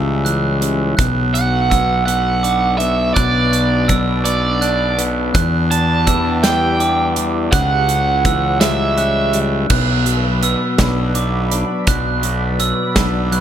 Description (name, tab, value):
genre	post-rock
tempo	55 BPM (dotted quarters)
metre	6/8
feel	straight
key	B minor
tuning	A4 = 440 Hz
part	phased analog pad	sustained chords	0.0-13.4 s	B3 to B5	-27 LUFS	equal	phaser, chorus
part	clean electric guitar	arpeggios	0.0-13.4 s	E2 to D4	-22 LUFS	left 3 dB	analog delay
part	glockenspiel with hard plastic mallets	arpeggios	0.0-13.4 s	D6 to F#6	-23 LUFS	right 5 dB	analog delay
part	fuzz fingered electric bass	bass	0.0-13.4 s	B1 to E2	-19 LUFS	equal	overdrive
part	big rock drum kit	drums	0.3-13.4 s	crash cymbal, hi-hat, kick drum, snare drum	-19 LUFS	right 1 dB	none
part	overdriven electric guitar	melody	1.3-9.4 s	D5 to A5	-18 LUFS	right 4 dB	analog delay
room	light reverb, small room ambience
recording	none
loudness	-14 LUFS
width	side -10 dB against mid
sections	1.0-9.7 A section; 9.7-13.4 B section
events	none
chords	0.0 C#dim; 1.0 Bm; 5.3 Em7; 7.5 C#dim; 9.7 Bm